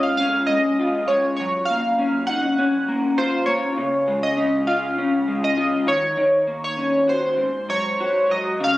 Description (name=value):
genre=indie pop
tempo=100 BPM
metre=4/4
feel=swing 55% on 16ths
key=Db major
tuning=A4 = 440 Hz
part: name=chorused retro synth keys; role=melody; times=0.0-8.8 s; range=C5 to Gb5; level=-20 LUFS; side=equal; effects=phaser, analog chorus, slapback echo, plate reverb
part: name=electric guitar through a small old amp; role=accompaniment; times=0.0-8.8 s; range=Ab2 to Gb4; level=-22 LUFS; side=left 2 dB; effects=analog chorus, warbly pitch drift
room=wet studio reverb, RT60 0.6 s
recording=recorded on a phone in the room, studio reverb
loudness=-18 LUFS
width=side -16 dB against mid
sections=0.0-8.6 A section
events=none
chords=0.0 Bbm7; 1.4 Gbmaj7; 3.8 Db; 5.9 Ebm7; 7.4 Ab7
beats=0.19 0.79 | 1.39 1.99 2.59 3.19 | 3.79 4.39 4.99 5.59 | 6.19 6.79 7.39 7.99 | 8.59